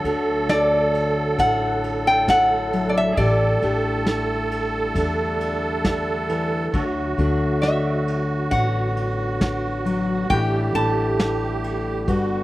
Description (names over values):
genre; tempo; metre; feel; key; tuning
acoustic folk duo or small band; 67 BPM; 4/4; straight; unclear; A4 = 440 Hz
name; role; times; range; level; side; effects
musette accordion; second line; 0.0-12.4 s; F#4 to A4; -26 LUFS; right 4 dB; slapback echo
fingerpicked steel-string acoustic guitar; accompaniment; 0.0-12.4 s; G2 to G4; -26 LUFS; left 2 dB; none
pedal harmonium; sustained chords; 0.0-12.4 s; D3 to F#4; -30 LUFS; left 2 dB; none
upright bass; bass; 0.0-12.4 s; G1 to E2; -26 LUFS; equal; none
soft brush drum kit; drums; 0.0-12.3 s; kick drum, ride cymbal, snare drum; -26 LUFS; equal; none
lap resonator guitar; melody; 0.5-12.4 s; D5 to A5; -21 LUFS; equal; slapback echo
room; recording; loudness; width
little or no reverb; recorded outdoors, with no room sound; -19 LUFS; side -17 dB against mid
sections
0.0-12.4 A section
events
none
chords
0.0 D; 3.2 A7sus4; 6.7 D; 10.3 A7sus4